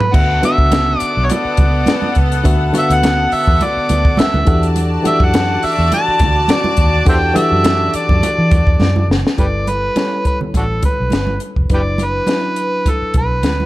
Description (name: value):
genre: lush 1970s-style soul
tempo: 104 BPM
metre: 4/4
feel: swing 54% on 16ths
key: D major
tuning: A4 = 441 Hz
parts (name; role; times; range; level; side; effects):
- overdriven harmonica; melody; 0.0-13.7 s; D4 to A5; -18 LUFS; equal; none
- compact cocktail drum kit; drums; 0.0-13.6 s; crash cymbal, hi-hat, kick drum, snare drum, toms; -16 LUFS; equal; none
- warm studio string section; second line; 0.1-9.1 s; B3 to A5; -22 LUFS; left 1 dB; none
- barky reed electric piano; accompaniment; 0.1-13.7 s; D3 to F#5; -22 LUFS; left 2 dB; none
- vintage muted fingered electric bass; bass; 0.1-13.7 s; F1 to E3; -17 LUFS; equal; none
- congas; percussion; 0.4-13.7 s; none; -23 LUFS; right 3 dB; none
room: small room ambience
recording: none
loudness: -12 LUFS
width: side -17 dB against mid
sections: 0.1-9.4 A section; 9.4-13.7 B section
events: drum fill 8.8-9.4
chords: 0.1 D69; 4.5 Em11; 9.4 G69; 11.7 D6/F#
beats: | 0.14 0.72 1.30 1.88 | 2.46 3.03 3.61 4.19 | 4.77 5.34 5.92 6.50 | 7.08 7.66 8.23 8.81 | 9.39 9.97 10.54 11.12 | 11.70 12.28 12.86 13.44